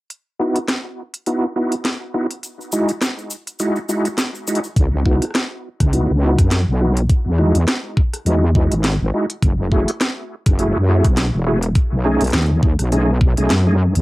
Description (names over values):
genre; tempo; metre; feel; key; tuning
glitch hop; 103 BPM; 4/4; swing 57% on 16ths; unclear; A4 = 440 Hz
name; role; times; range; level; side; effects
drum and bass drum kit; drums; 0.1-14.0 s; hi-hat, rim click, snare drum; -22 LUFS; equal; cassette tape
bright tonewheel organ; stabs; 0.4-13.8 s; G#3 to G#4; -20 LUFS; equal; chorus vibrato, fast rotary speaker, sidechain pumping, low-pass filter, tape echo
cabasa; percussion; 2.4-4.7 s; none; -30 LUFS; left 2 dB; none
wobble bass; bass; 4.8-14.0 s; E1 to F#2; -16 LUFS; equal; chorus, overdrive
electronic kick drum; drums; 4.8-13.3 s; none; -16 LUFS; equal; cassette tape
room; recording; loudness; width
light reverb; home recording on cassette; -15 LUFS; side -19 dB against mid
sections
0.1-4.8 A section; 4.8-14.0 B section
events
filter sweep on tonewheel organ 4.8-14.0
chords
0.1 Badd11; 2.4 Emaj9; 4.8 C#m11; 7.1 Emaj9; 9.4 F#m9; 11.8 B13